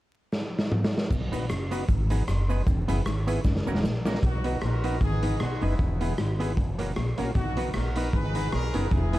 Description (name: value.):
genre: ska.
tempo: 154 BPM.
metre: 4/4.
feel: swing 56% on 8ths.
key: B major.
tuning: A4 = 443 Hz.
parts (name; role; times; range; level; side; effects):
raw garage drum kit; drums; 0.3-9.2 s; crash cymbal, hi-hat, kick drum, rim click, snare drum, toms; -28 LUFS; equal; none.
electric guitar at the edge of break-up; riff; 1.1-9.0 s; E2 to B2; -36 LUFS; left 2 dB; none.
upright bass; bass; 1.1-9.2 s; E1 to B1; -28 LUFS; equal; none.
cabasa; percussion; 1.1-4.1 s; none; -55 LUFS; right 6 dB; none.
semi-hollow electric guitar; accompaniment; 1.3-9.2 s; A#3 to B4; -35 LUFS; right 4 dB; tape echo.
percussive tonewheel organ; stabs; 1.3-9.2 s; A#3 to B4; -37 LUFS; left 3 dB; chorus vibrato, slow rotary speaker, tape echo.
clear horn section; melody; 4.2-9.2 s; G#3 to B4; -34 LUFS; equal; tape echo.
room: little or no reverb.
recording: dark, warm production, vinyl crackle.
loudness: -24 LUFS.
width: side -16 dB against mid.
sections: 0.0-1.1 A section; 1.1-4.2 B section; 4.2-9.2 C section.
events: drum fill 0.3-1.1, 3.4-4.2.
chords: 0.0 N.C.; 1.1 B; 1.9 G#m; 2.7 E; 3.4 F#; 4.2 B; 5.0 G#m; 5.8 E; 6.6 F#; 7.4 B; 8.1 G#m.